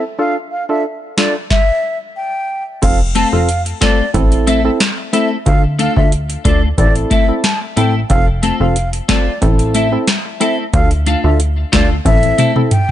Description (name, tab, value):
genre	dancehall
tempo	91 BPM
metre	4/4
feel	straight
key	A minor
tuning	A4 = 440 Hz
part	percussive organ stab	accompaniment	0.0-12.7 s	C4 to A4	-20 LUFS	right 2 dB	chorus, sidechain pumping, low-pass filter
part	wooden flute	melody	0.2-12.9 s	D5 to A5	-19 LUFS	left 1 dB	low-pass filter, ping-pong delay
part	booming analog drum machine	drums	1.2-12.9 s	crash cymbal, hi-hat, kick drum, snare drum, toms	-15 LUFS	equal	overdrive
part	plucky analog bass	bass	2.8-12.3 s	F1 to D2	-16 LUFS	equal	none
part	clean electric guitar	arpeggios	3.2-12.6 s	A3 to A4	-19 LUFS	left 4 dB	analog chorus, ping-pong delay
room	digital ambience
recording	nothing above 10.3 kHz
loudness	-12 LUFS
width	side -12 dB against mid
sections	0.0-2.8 A section; 2.8-12.9 B section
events	drum fill 12.1-12.9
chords	0.2 Dm; 1.5 N.C.; 2.8 F; 4.1 Am; 5.5 Dm; 6.8 Am; 8.1 F; 9.4 Am; 10.7 Dm; 12.1 Am